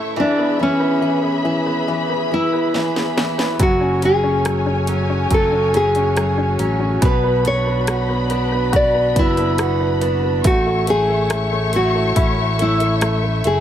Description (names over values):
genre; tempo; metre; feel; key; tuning
pop ballad; 70 BPM; 4/4; straight; A major; A4 = 440 Hz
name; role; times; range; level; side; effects
nylon-string guitar; melody; 0.0-13.6 s; C#4 to D5; -19 LUFS; equal; none
clear baby grand piano; accompaniment; 0.0-13.6 s; E3 to F#4; -22 LUFS; left 1 dB; none
warm studio string section; sustained chords; 0.0-13.6 s; A3 to C#6; -25 LUFS; left 2 dB; none
picked steel-string acoustic guitar; arpeggios; 0.0-13.6 s; F#2 to A4; -28 LUFS; right 7 dB; digital delay
house drum kit; drums; 2.7-13.6 s; hi-hat, kick drum, rim click, snare drum; -20 LUFS; equal; none
fingered electric bass; bass; 3.6-13.6 s; F#1 to B1; -21 LUFS; equal; none
room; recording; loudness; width
light reverb, small room reverb; none; -15 LUFS; side -10 dB against mid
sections
0.0-13.6 A section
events
drum fill 2.7-3.6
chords
0.2 E; 3.6 F#madd9; 7.0 Bm; 10.5 A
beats
| 0.17 1.02 1.88 2.74 | 3.59 4.45 5.31 6.17 | 7.02 7.88 8.74 9.59 | 10.45 11.31 12.16 13.02